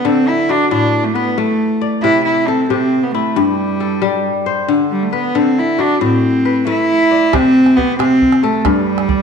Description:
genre	west african traditional, West African string and xylophone music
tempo	91 BPM (dotted quarters)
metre	12/8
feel	straight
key	C lydian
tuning	A4 = 439 Hz
part	rich cello	melody	0.0-9.2 s	G3 to E4	-14 LUFS	right 2 dB	none
part	kora	arpeggios	0.0-9.2 s	G2 to D5	-16 LUFS	left 5 dB	none
part	calabash	percussion	7.3-9.2 s	none	-20 LUFS	right 6 dB	none
room	wet echo chamber reverb, RT60 1.7 s, studio ambience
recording	1960s-style stereo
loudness	-12 LUFS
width	side -6 dB against mid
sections	0.0-7.3 A section; 7.3-9.2 B section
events	none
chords	0.0 D; 0.7 Asus24; 2.0 C; 3.4 Gsus24; 4.7 D; 6.0 Am; 7.3 C5; 8.7 G5

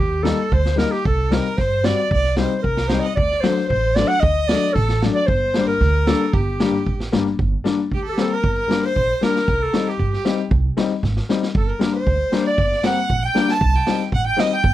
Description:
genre	klezmer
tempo	115 BPM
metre	2/4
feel	straight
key	G harmonic minor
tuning	A4 = 440 Hz
part	clear clarinet	melody	0.0-14.7 s	G4 to A5	-21 LUFS	equal	none
part	clear violin	second line	0.0-14.7 s	G4 to A5	-29 LUFS	right 7 dB	none
part	upright bass	bass	0.0-14.7 s	G1 to G2	-22 LUFS	right 2 dB	none
part	clear upright piano	accompaniment	0.2-14.5 s	F#3 to F#4	-23 LUFS	left 6 dB	none
part	street-band drum kit	drums	0.2-14.7 s	kick drum, snare drum	-23 LUFS	right 1 dB	none
room	light reverb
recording	dry, close 1970s-style studio recording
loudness	-17 LUFS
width	side -13 dB against mid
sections	0.0-7.4 A section; 7.4-14.7 B section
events	speeding up 0.0-14.7; clarinet solo 7.4-14.7; drum fill 11.0-11.6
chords	0.0 Eb; 1.1 Cm; 3.2 D; 5.3 Gm; 9.5 Cm; 11.6 Gm; 13.6 Cm

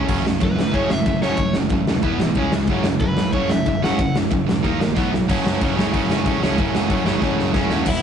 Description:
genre	punk rock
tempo	185 BPM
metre	4/4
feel	straight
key	unclear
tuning	A4 = 439 Hz
part	distorted electric guitar	riff	0.0-8.0 s	E2 to D#4	-24 LUFS	left 5 dB	distortion
part	tight distorted guitar	riff	0.0-7.9 s	F#2 to E4	-24 LUFS	right 6 dB	distortion
part	modern bright picked electric bass	bass	0.0-8.0 s	E1 to F#2	-28 LUFS	equal	none
part	big rock drum kit	drums	0.1-7.9 s	crash cymbal, kick drum, ride cymbal, snare drum	-20 LUFS	equal	none
part	overdriven electric guitar	melody	0.4-4.2, 7.9-8.0 s	E4 to F#5	-25 LUFS	equal	none
room	light reverb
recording	rough rehearsal-room recording, nothing above 10.6 kHz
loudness	-17 LUFS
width	side -8 dB against mid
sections	0.0-5.3 A section; 5.3-7.9 B section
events	overdriven electric guitar solo 0.0-5.3; drum fill 5.0-5.3, 7.2-7.9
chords	0.0 F#m; 2.0 E5; 2.4 C#5; 2.7 F#5; 4.6 D#5; 5.0 B5; 5.3 F#m

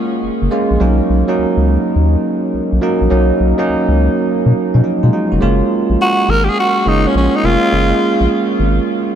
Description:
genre	R&B, new jack swing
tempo	104 BPM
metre	4/4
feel	swing 66% on 16ths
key	unclear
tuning	A4 = 437 Hz
part	bell-like tine electric piano	accompaniment	0.0-9.2 s	E#3 to F#4	-15 LUFS	right 2 dB	wide subtle chorus
part	round analog bass	bass	0.2-8.8 s	E#1 to B2	-14 LUFS	left 1 dB	none
part	growling tenor saxophone	melody	6.0-8.3 s	C#4 to A#4	-17 LUFS	equal	ping-pong delay
room	moderate huge ambient reverb, RT60 9.0 s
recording	dreamy mix soaked in reverb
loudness	-12 LUFS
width	side -9 dB against mid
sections	0.0-5.4 A section; 5.4-9.2 B section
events	none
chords	0.0 F#maj7; 0.8 Bmaj9; 5.4 F#maj7

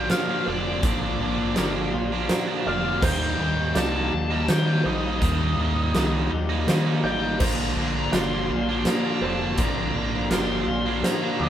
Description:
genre	post-rock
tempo	82 BPM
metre	3/4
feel	straight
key	Bb major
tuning	A4 = 442 Hz
part	octave-fuzz lead guitar	melody	0.0-11.5 s	D5 to C6	-30 LUFS	left 3 dB	distortion
part	felt-muted upright piano	arpeggios	0.0-11.5 s	Bb4 to D6	-35 LUFS	right 4 dB	none
part	twelve-string electric guitar	arpeggios	0.0-11.5 s	Bb2 to G4	-33 LUFS	left 1 dB	none
part	cranked stack guitar	riff	0.0-11.5 s	Bb2 to Eb4	-28 LUFS	right 6 dB	overdrive
part	crunchy overdriven guitar	riff	0.0-11.5 s	Bb2 to Eb4	-30 LUFS	left 5 dB	spring reverb
part	fingered electric bass	bass	0.0-11.5 s	F1 to Eb3	-28 LUFS	equal	none
part	huge arena drum kit	drums	0.1-11.2 s	crash cymbal, hi-hat, kick drum, snare drum	-27 LUFS	equal	none
room	moderate studio reverb, RT60 0.6 s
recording	band playing live in one room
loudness	-21 LUFS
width	side -10 dB against mid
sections	0.0-11.5 A section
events	none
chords	0.0 Bbadd9; 3.0 Ebmaj7; 7.4 Bbadd9

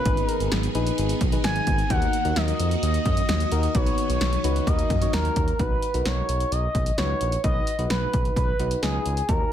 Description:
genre	synth-pop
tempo	130 BPM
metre	4/4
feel	straight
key	unclear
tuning	A4 = 440 Hz
part	expressive synth lead	melody	0.0-9.5 s	Ab4 to Ab5	-27 LUFS	equal	chorus, digital delay
part	string machine, violins	sustained chords	0.0-5.6 s	Eb3 to Ab4	-30 LUFS	equal	ensemble chorus
part	soft electric-piano-like synth keys	accompaniment	0.1-9.5 s	Eb4 to Db5	-31 LUFS	left 3 dB	chorus
part	smooth synth bass	bass	0.1-9.4 s	Ab1 to Gb2	-26 LUFS	equal	none
part	punchy analog drum machine	drums	0.1-9.4 s	hi-hat, kick drum, snare drum	-26 LUFS	equal	none
room	light reverb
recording	dense, heavily limited modern master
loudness	-21 LUFS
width	side -10 dB against mid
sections	0.0-5.6 A section; 5.6-9.5 B section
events	none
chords	0.1 Abm; 1.9 Ebm; 3.7 B; 4.7 Ebm; 5.6 Badd9

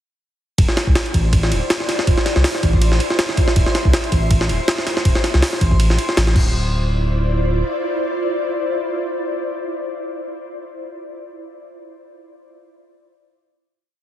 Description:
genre	drum and bass, jungle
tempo	161 BPM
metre	4/4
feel	swing 55% on 16ths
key	D minor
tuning	A4 = 440 Hz
part	ethereal airy pad	sustained chords	1.1-10.3 s	E4 to E5	-25 LUFS	equal	ensemble chorus, built-in reverb
part	saturated sub bass	bass	0.6-7.6 s	D1 to C2	-17 LUFS	equal	tube saturation
part	jungle sampler-style drum kit	drums	0.6-6.4 s	crash cymbal, hi-hat, kick drum, ride cymbal, snare drum	-17 LUFS	equal	none
part	backwards swelling texture	texture	1.3-5.1 s	C5 to C6	-32 LUFS	left 2 dB	built-in reverb
room	light reverb, digital ambience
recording	heavily compressed radio sound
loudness	-16 LUFS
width	side -12 dB against mid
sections	0.6-6.5 drop; 6.5-9.5 final hit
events	drop 0.6-6.5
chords	0.6 Dm9

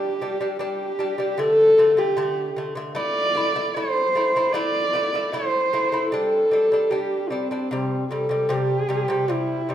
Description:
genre	mongolian traditional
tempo	76 BPM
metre	4/4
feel	straight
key	C gong mode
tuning	A4 = 440 Hz
part	dark horsehead fiddle	melody	0.0-9.7 s	C4 to D5	-20 LUFS	equal	none
part	lute	arpeggios	0.0-9.7 s	C3 to E4	-27 LUFS	left 2 dB	none
room	moderate recital hall reverb, RT60 1.6 s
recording	minimal, uncompressed stereo recording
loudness	-19 LUFS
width	side -10 dB against mid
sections	0.0-9.3 A section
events	none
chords	0.0 G5; 1.4 D5; 3.0 A5; 6.1 G5; 7.7 C5

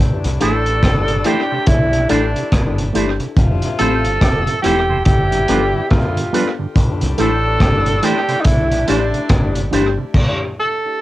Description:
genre	lovers rock reggae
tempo	71 BPM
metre	4/4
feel	swing 61% on 16ths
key	C major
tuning	A4 = 440 Hz
part	edgy saxophone section	second line	0.0-9.7 s	A2 to F4	-27 LUFS	left 6 dB	cassette tape
part	mellow tonewheel organ	accompaniment	0.2-10.1 s	F2 to E4	-22 LUFS	right 5 dB	slow rotary speaker, cassette tape
part	deep dub fingered electric bass	bass	0.2-10.0 s	E1 to C2	-20 LUFS	equal	none
part	crunchy breakbeat drum kit	drums	0.2-10.4 s	crash cymbal, hi-hat, kick drum, rim click	-16 LUFS	equal	cassette tape, tape echo
part	warm tenor saxophone	melody	0.4-11.0 s	D4 to A4	-20 LUFS	right 1 dB	cassette tape, tape echo
part	FM electric piano with soft pad layer	accompaniment	0.4-10.1 s	A3 to A4	-23 LUFS	left 6 dB	chorus, cassette tape, tape echo
part	electric guitar with an envelope filter	stabs	0.4-10.0 s	G3 to C5	-23 LUFS	right 6 dB	warbly pitch drift, cassette tape
room	moderate booth ambience, RT60 0.2 s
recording	home recording on cassette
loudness	-13 LUFS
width	side -15 dB against mid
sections	0.0-11.0 A section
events	none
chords	0.0 C69; 3.4 Fmaj7; 5.1 G7; 6.8 C69; 10.1 N.C.

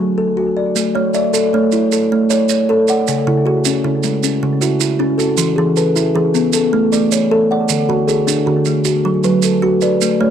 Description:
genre	southern african traditional, mbira-style interlocking cycle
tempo	104 BPM (dotted quarters)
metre	12/8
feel	straight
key	A major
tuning	A4 = 443 Hz
part	kalimba	arpeggios	0.0-10.3 s	C#3 to F#5	-15 LUFS	left 2 dB	tape echo
part	maracas	percussion	0.8-10.2 s	none	-22 LUFS	right 16 dB	none
part	kalimba	arpeggios	1.0-10.3 s	C#3 to E5	-17 LUFS	right 4 dB	none
room	light reverb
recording	dry, close 1970s-style studio recording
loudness	-13 LUFS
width	side -9 dB against mid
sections	0.8-10.3 A section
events	none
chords	0.0 F#m; 0.8 A; 3.1 C#m; 5.4 E; 6.5 A; 7.7 D; 8.9 F#m

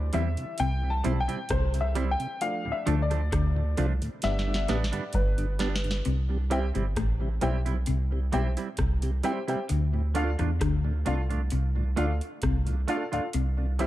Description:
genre	roots reggae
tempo	66 BPM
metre	4/4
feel	straight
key	C major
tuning	A4 = 442 Hz
part	warm upright piano	stabs	0.0-13.9 s	E3 to A5	-33 LUFS	left 2 dB	none
part	soft dub sub bass	bass	0.0-13.9 s	G1 to E2	-27 LUFS	equal	none
part	mellow tonewheel organ	accompaniment	0.1-13.9 s	D2 to G4	-36 LUFS	right 1 dB	slow rotary speaker, dub echo
part	semi-hollow electric guitar	accompaniment	0.1-13.9 s	F3 to F4	-35 LUFS	right 7 dB	lush chorus, dub echo
part	clean electric guitar	riff	0.1-13.6 s	G2 to E3	-32 LUFS	left 4 dB	wide subtle chorus
part	booming analog drum machine	drums	0.1-13.9 s	hi-hat, kick drum, rim click, snare drum	-33 LUFS	equal	none
room	digital ambience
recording	none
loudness	-25 LUFS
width	side -15 dB against mid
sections	0.0-6.1 A section; 6.1-13.9 B section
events	upright piano solo 0.0-6.1; drum fill 4.2-6.1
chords	0.0 C; 2.4 Dm; 4.2 G; 6.1 C; 9.7 Dm; 13.3 C

